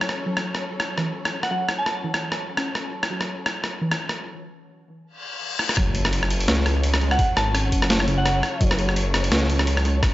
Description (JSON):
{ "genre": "half-time drum and bass", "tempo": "169 BPM", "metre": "4/4", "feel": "swing 57% on 16ths, half-time", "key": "F# minor", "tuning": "A4 = 440 Hz", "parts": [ { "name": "warm studio string section", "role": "sustained chords", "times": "0.0-10.1 s", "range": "F#3 to C#5", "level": "-33 LUFS", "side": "left 1 dB", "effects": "vintage 12-bit sampler grit, sidechain pumping" }, { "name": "warbly dusty pluck", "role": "arpeggios", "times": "0.0-10.0 s", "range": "C#3 to C#4", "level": "-31 LUFS", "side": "right 1 dB", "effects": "chorus, analog delay" }, { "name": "boom bap sampler-style drum kit", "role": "drums", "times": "0.0-10.1 s", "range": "hi-hat, rim click, snare drum", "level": "-24 LUFS", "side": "equal", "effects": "none" }, { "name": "soft synth bell", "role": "melody", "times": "1.4-2.0, 7.1-8.7 s", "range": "F#5 to A5", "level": "-28 LUFS", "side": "right 1 dB", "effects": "chorus, analog delay" }, { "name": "reverse cymbal and impact", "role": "sound effects", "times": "5.2-7.2 s", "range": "none", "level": "-31 LUFS", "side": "left 3 dB", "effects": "none" }, { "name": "dark detuned saw bass", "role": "bass", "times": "5.8-10.0 s", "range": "F#1 to C#2", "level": "-22 LUFS", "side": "equal", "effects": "none" }, { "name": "electronic kick drum", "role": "drums", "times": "5.8-10.1 s", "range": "none", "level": "-22 LUFS", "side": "equal", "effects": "none" } ], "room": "light reverb", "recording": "dry, gritty hardware recording, nothing above 7.7 kHz", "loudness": "-20 LUFS", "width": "side -16 dB against mid", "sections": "0.0-5.8 A section; 5.8-10.1 B section", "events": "filter sweep on synth pluck 0.0-5.8; break 4.3-5.8; reverse cymbal 5.2-5.8; drum fill 5.6; drop 5.8-10.1; impact 5.8-7.2", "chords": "0.0 F#m" }